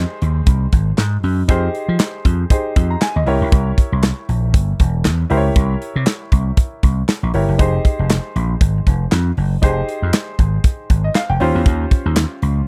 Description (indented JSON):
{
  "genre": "early-eighties boogie funk",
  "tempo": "118 BPM",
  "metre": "4/4",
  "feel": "swing 56% on 16ths",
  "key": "F minor",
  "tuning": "A4 = 440 Hz",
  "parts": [
    { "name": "bright baby grand piano", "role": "accompaniment", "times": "0.0-12.7 s", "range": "Db4 to Bb5", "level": "-26 LUFS", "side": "equal", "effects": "none" },
    { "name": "vintage slap bass", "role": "bass", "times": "0.0-12.6 s", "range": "E1 to F3", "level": "-19 LUFS", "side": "equal", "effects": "none" },
    { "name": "modern studio drum kit", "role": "drums", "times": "0.2-12.6 s", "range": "handclaps, hi-hat, kick drum, snare drum", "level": "-16 LUFS", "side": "equal", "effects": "none" }
  ],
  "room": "little or no reverb",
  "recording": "dry, close 1970s-style studio recording",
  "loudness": "-17 LUFS",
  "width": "mono",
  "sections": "0.0-12.7 A section",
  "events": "none",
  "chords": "0.0 Fm9; 3.3 C7b9; 7.6 Fm9; 11.4 Eb13",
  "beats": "0.47 0.98 | 1.49 2.00 2.51 3.02 | 3.52 4.03 4.54 5.05 | 5.56 6.07 6.57 7.08 | 7.59 8.10 8.61 9.12 | 9.62 10.13 10.64 11.15 | 11.66 12.17 12.68"
}